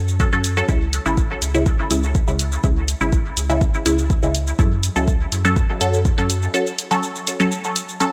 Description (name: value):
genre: dub techno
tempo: 123 BPM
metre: 4/4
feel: straight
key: C# minor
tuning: A4 = 440 Hz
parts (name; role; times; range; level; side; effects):
- warm sub bass; bass; 0.0-6.5 s; G#1 to F#2; -24 LUFS; equal; sidechain pumping
- electronic cabasa and hi-hat; drums; 0.1-8.1 s; none; -29 LUFS; equal; none
- filtered dub chord stab; stabs; 0.2-8.1 s; C#3 to A4; -23 LUFS; equal; phaser, sidechain pumping, dub echo
- electronic kick drum; drums; 0.2-6.2 s; none; -21 LUFS; equal; none
room: light reverb, digital ambience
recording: none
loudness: -19 LUFS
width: mono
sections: 0.0-8.1 A section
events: none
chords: 0.0 F#m; 0.7 C#m; 4.6 F#m